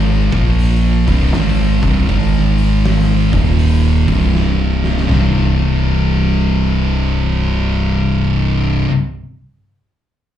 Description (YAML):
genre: stoner and doom metal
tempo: 80 BPM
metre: 4/4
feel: swing 65% on 8ths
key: C minor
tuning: A4 = 440 Hz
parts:
  - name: thick fuzz guitar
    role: riff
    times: 0.0-8.9 s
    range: C2 to Bb3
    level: -18 LUFS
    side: left 9 dB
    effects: distortion
  - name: thick fuzz guitar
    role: riff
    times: 0.0-8.9 s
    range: C2 to Bb3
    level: -18 LUFS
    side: right 9 dB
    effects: distortion
  - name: growling picked electric bass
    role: bass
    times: 0.0-8.8 s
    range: C1 to Bb1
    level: -16 LUFS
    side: equal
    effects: overdrive, tube saturation
  - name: oversized low-tuned drum kit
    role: drums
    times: 0.3-5.3 s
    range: hi-hat, kick drum, snare drum, toms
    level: -21 LUFS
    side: equal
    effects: none
room: light reverb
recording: live gig heard through the venue's PA, club reverb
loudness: -12 LUFS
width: side -10 dB against mid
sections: 0.0-5.1 A section; 5.1-8.1 B section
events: drum fill 4.3-5.1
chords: 0.2 Bb5; 1.0 Cm; 2.1 Ab5; 3.2 Eb5; 4.0 C5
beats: 0.59 1.34 | 2.10 2.85 3.60 4.35 | 5.10 5.85 6.59 7.34